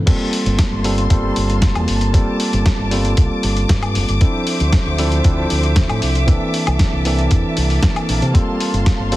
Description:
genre	nu-disco, nu disco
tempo	116 BPM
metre	4/4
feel	straight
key	G dorian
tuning	A4 = 441 Hz
part	tine electric piano	accompaniment	0.0-9.2 s	E3 to A4	-21 LUFS	equal	overdrive, sidechain pumping, analog delay
part	dark studio string section	sustained chords	0.1-9.2 s	Bb3 to D6	-25 LUFS	equal	sidechain pumping
part	dusty soul sampler-style drum kit	drums	0.1-9.2 s	crash cymbal, hi-hat, snare drum, woodblock	-23 LUFS	left 1 dB	overdrive
part	electronic kick drum	drums	0.1-9.0 s	none	-15 LUFS	equal	overdrive
part	fingered electric bass with an envelope filter	bass	0.5-9.2 s	G1 to C3	-19 LUFS	equal	sidechain pumping
room	little or no reverb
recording	heavily compressed radio sound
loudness	-14 LUFS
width	side -16 dB against mid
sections	0.1-9.2 A section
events	drop 0.1-9.2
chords	0.1 Gm11; 4.2 Dm9; 6.3 C13; 8.3 Gm11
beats	| 0.07 0.59 1.11 1.62 | 2.14 2.66 3.17 3.69 | 4.21 4.73 5.24 5.76 | 6.28 6.80 7.31 7.83 | 8.35 8.87

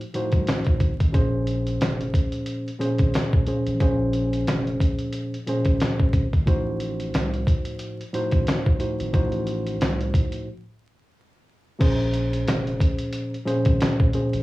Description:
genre	hip hop, boom-bap hip-hop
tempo	90 BPM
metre	4/4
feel	swing 56% on 16ths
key	Bb minor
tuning	A4 = 440 Hz
part	tine electric piano	accompaniment	0.0-14.4 s	A2 to C5	-25 LUFS	equal	medium stereo tremolo, high-pass filter, low-pass filter, cassette tape
part	dusty soul sampler-style drum kit	drums	0.0-14.4 s	crash cymbal, hi-hat, kick drum, snare drum	-22 LUFS	equal	cassette tape
part	saturated sub bass	bass	0.3-14.4 s	F1 to C2	-30 LUFS	equal	none
room	light reverb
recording	home recording on cassette, vinyl crackle, small room ambience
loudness	-21 LUFS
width	side -18 dB against mid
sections	0.0-11.8 A section; 11.8-14.4 B section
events	break 10.5-11.8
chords	0.0 F7b9; 1.1 Bbm7; 6.5 F7b9; 11.8 Bbm7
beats	0.47 | 1.14 1.81 2.47 3.14 | 3.81 4.47 5.14 5.81 | 6.47 7.14 7.81 8.47 | 9.14 9.81 10.47 11.14 | 11.81 12.47 13.14 13.81

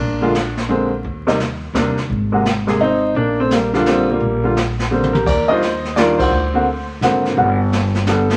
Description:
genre	jazz piano trio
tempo	171 BPM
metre	3/4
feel	swing 65% on 8ths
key	Bb major, Eb major from 5.3 s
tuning	A4 = 439 Hz
part	clear baby grand piano	melody	0.0-8.4 s	C3 to Eb5	-18 LUFS	equal	none
part	upright bass	bass	0.0-8.4 s	G1 to Eb2	-24 LUFS	equal	none
part	jazz brush drum kit	drums	0.3-8.4 s	brushed snare drum, crash cymbal, hi-hat, kick drum, snare drum, toms	-25 LUFS	equal	none
room	wet studio reverb, RT60 0.7 s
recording	vinyl crackle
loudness	-17 LUFS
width	mono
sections	0.0-5.3 A section; 5.3-8.4 B section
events	drum fill 4.9-5.3; band accent 6.1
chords	0.0 Bb7; 1.0 Eb6; 2.1 Abadd9; 3.2 Bb6; 5.3 Ebmaj9; 6.3 Daug7; 7.4 G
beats	0.34 0.69 | 1.04 1.39 1.75 | 2.10 2.45 2.80 | 3.15 3.50 3.85 | 4.21 4.56 4.91 | 5.26 5.61 5.96 | 6.32 6.67 7.02 | 7.37 7.72 8.07

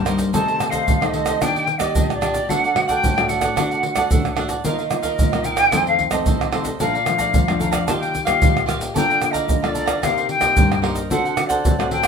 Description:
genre	samba and choro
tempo	111 BPM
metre	4/4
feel	straight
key	unclear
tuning	A4 = 439 Hz
part	silver concert flute	melody	0.0-12.1 s	D5 to A5	-20 LUFS	equal	none
part	cavaquinho	accompaniment	0.0-12.1 s	D4 to Bb5	-26 LUFS	right 4 dB	none
part	nylon-string guitar	accompaniment	0.0-12.1 s	F2 to A4	-25 LUFS	left 4 dB	none
part	tube shaker, pandeiro, tamborim and surdo	percussion	0.1-12.1 s	none	-21 LUFS	right 1 dB	none
room	moderate studio reverb, RT60 1.0 s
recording	minimal, uncompressed stereo recording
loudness	-17 LUFS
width	side -6 dB against mid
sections	0.0-12.1 A section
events	none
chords	0.3 Adim/C; 1.4 Ebmaj7; 2.5 D; 4.6 Ebsus2; 5.7 F7; 6.8 Bbmaj7; 7.9 Ebadd9; 9.0 Bbmaj7/D; 10.0 Cm7; 11.1 D7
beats	| 0.34 0.88 1.42 1.96 | 2.50 3.03 3.57 4.11 | 4.65 5.19 5.72 6.26 | 6.80 7.34 7.88 8.42 | 8.96 9.49 10.03 10.57 | 11.11 11.65

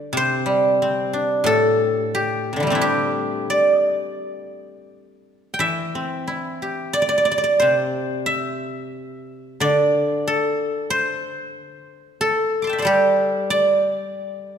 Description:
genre	chinese traditional, Chinese solo plucked strings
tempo	84-95 BPM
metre	4/4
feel	rubato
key	D shang mode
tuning	A4 = 441 Hz
part	guzheng	solo	0.0-14.6 s	A2 to D6	-18 LUFS	equal	none
room	moderate concert hall reverb, RT60 2.3 s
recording	recorded in a church or concert hall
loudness	-18 LUFS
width	side -8 dB against mid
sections	0.0-14.6 A section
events	none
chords	none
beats	| 0.15 0.80 1.46 2.12 | 2.79 3.47 4.16 4.88 | 5.59 6.28 6.95 7.62 | 8.29 8.96 9.62 10.27 | 10.91 11.56 12.21 12.87 | 13.52 14.18

